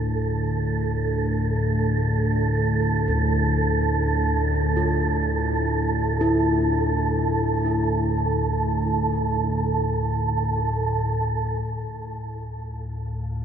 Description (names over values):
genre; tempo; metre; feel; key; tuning
dark ambient drone; free time; none; none; D minor; A4 = 440 Hz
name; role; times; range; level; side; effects
deep rumbling drone; drone; 0.0-13.4 s; D2 to A2; -24 LUFS; equal; built-in reverb
wind-like tuned noise texture; texture; 0.0-13.4 s; F4 to A4; -26 LUFS; right 4 dB; built-in reverb
gamelan-type bossed gongs; arpeggios; 3.1-12.0 s; D2 to F4; -26 LUFS; left 2 dB; diffuse ambient delay
room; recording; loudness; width
wet huge ambient reverb, RT60 7.3 s; none; -21 LUFS; side -8 dB against mid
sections
0.0-11.6 A section; 11.6-13.4 B section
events
none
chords
0.0 D5; 3.9 Dmadd9